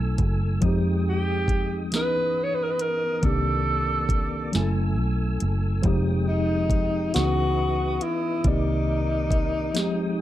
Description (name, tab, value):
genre	slow six-eight R&B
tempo	46 BPM (dotted quarters)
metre	6/8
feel	straight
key	unclear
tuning	A4 = 443 Hz
part	breathy tenor saxophone	melody	0.0-10.2 s	Eb4 to Db5	-26 LUFS	left 1 dB	slapback echo
part	tine electric piano	accompaniment	0.0-10.2 s	Eb3 to Ab5	-28 LUFS	equal	overdrive, fast stereo tremolo
part	tonewheel organ	sustained chords	0.0-10.2 s	Ab3 to Fb6	-37 LUFS	equal	chorus vibrato, slow rotary speaker
part	vintage muted fingered electric bass	bass	0.0-10.2 s	F1 to F2	-26 LUFS	equal	none
part	smooth R&B drum kit	drums	0.2-10.0 s	hi-hat, kick drum, snare drum	-25 LUFS	equal	none
room	light reverb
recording	dark, warm production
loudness	-22 LUFS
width	side -13 dB against mid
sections	0.0-10.2 A section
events	tine electric piano fill 9.8-10.2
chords	0.0 Gbm9; 0.6 Fm9; 1.9 Dbm9; 3.2 Cm9; 4.5 Gbm9; 5.8 Fm9; 7.1 Dbm9; 8.4 Cm9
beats	| 0.62 1.92 | 3.23 4.53 | 5.84 7.14 | 8.45 9.75